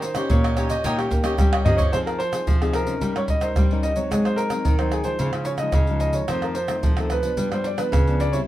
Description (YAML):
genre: samba and choro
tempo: 110 BPM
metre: 4/4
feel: straight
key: F minor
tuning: A4 = 440 Hz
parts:
  - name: dark baby grand piano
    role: melody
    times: 0.0-8.4 s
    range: Ab4 to G5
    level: -26 LUFS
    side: right 1 dB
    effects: none
  - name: cavaquinho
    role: accompaniment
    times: 0.0-1.9 s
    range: Eb4 to Eb5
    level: -30 LUFS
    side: right 2 dB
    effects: none
  - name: nylon-string guitar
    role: accompaniment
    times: 0.0-8.5 s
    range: F2 to Bb4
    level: -29 LUFS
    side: left 4 dB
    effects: none
  - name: nylon-string guitar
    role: bass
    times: 0.0-8.4 s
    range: Bb2 to Bb3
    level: -26 LUFS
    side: equal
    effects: none
  - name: tube shaker, pandeiro, tamborim and surdo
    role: percussion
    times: 0.0-8.5 s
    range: none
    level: -22 LUFS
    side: right 1 dB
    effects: none
room: moderate studio reverb, RT60 0.8 s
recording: minimal, uncompressed stereo recording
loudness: -19 LUFS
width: side -14 dB against mid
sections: 0.0-1.9 A section; 1.9-8.5 B section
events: drum fill 1.5-1.9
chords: 0.0 Eb7; 1.9 Fm7; 3.0 Eb7/G; 4.1 Ab7; 5.2 Dbadd9; 6.3 F7; 7.4 G7